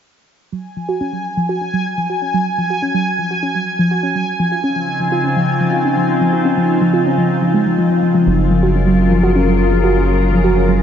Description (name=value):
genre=IDM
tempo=124 BPM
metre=4/4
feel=straight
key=Gb lydian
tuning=A4 = 440 Hz
part: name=harp-like synth pluck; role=arpeggios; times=0.5-10.8 s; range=F3 to Gb4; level=-16 LUFS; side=equal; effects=chorus, ping-pong delay, shimmer reverb
part: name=bubbling stepped-filter texture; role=texture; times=0.8-8.3 s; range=Ab5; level=-21 LUFS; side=right 1 dB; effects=chorus, built-in reverb, shimmer reverb
part: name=glassy FM pad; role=sustained chords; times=4.8-10.8 s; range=Db3 to Bb4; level=-17 LUFS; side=left 1 dB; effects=ensemble chorus, built-in reverb, shimmer reverb
part: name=round analog bass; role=bass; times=8.3-10.8 s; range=Gb1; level=-16 LUFS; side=equal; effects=none
room=moderate lush hall reverb, RT60 2.6 s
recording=nothing above 7.6 kHz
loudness=-13 LUFS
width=side -8 dB against mid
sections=0.5-8.3 A section; 8.3-10.8 B section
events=none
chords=0.5 Gbsus2; 4.4 Dbmaj9; 8.3 Gbmaj9